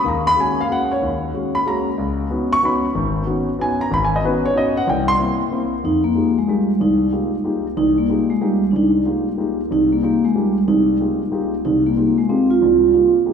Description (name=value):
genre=jazz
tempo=186 BPM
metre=3/4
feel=swing 64% on 8ths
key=F minor from 5.8 s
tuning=A4 = 441 Hz
part: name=dark concert grand piano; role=accompaniment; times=0.0-13.3 s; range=G#1 to C#6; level=-19 LUFS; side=left 1 dB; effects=none
part: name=vibraphone with soft mallets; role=melody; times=5.8-13.1 s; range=G3 to F4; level=-16 LUFS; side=right 1 dB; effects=none
room=wet church reverb, RT60 2.6 s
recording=recorded in a church or concert hall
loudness=-16 LUFS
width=side -7 dB against mid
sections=0.0-5.8 A section; 5.8-13.3 B section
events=none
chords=0.0 G#9sus4; 2.0 C#9sus4; 4.9 C7; 5.8 Fm11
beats=| 0.04 0.37 0.69 | 1.01 1.33 1.66 | 1.98 2.30 2.62 | 2.94 3.26 3.58 | 3.90 4.23 4.55 | 4.87 5.19 5.51 | 5.83 6.16 6.48 | 6.80 7.12 7.45 | 7.77 8.09 8.41 | 8.74 9.06 9.38 | 9.71 10.03 10.35 | 10.68 11.00 11.32 | 11.64 11.97 12.29 | 12.61 12.93 13.26